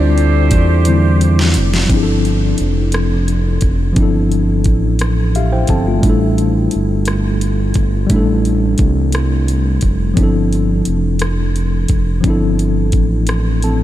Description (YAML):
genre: slow six-eight R&B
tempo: 58 BPM (dotted quarters)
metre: 6/8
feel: straight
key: D minor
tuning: A4 = 440 Hz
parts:
  - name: mellow tine electric piano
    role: accompaniment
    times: 0.0-13.8 s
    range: D3 to A5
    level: -17 LUFS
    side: left 2 dB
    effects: medium stereo tremolo
  - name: mellow horn section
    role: stabs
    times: 0.0-1.5 s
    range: A3 to C5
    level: -25 LUFS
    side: right 7 dB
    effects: none
  - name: smooth synth bass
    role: bass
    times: 0.0-13.8 s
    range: F1 to E2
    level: -15 LUFS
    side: equal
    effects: none
  - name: smooth R&B drum kit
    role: drums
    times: 0.2-13.8 s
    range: hi-hat, kick drum, rim click, snare drum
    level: -18 LUFS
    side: equal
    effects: none
room: light reverb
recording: none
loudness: -12 LUFS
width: side -13 dB against mid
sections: 0.0-1.9 A section; 1.9-13.8 B section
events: tine electric piano solo 0.0-1.9; drum fill 0.9-1.9; tine electric piano fill 5.0-6.0, 13.3-13.8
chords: 0.0 Dm11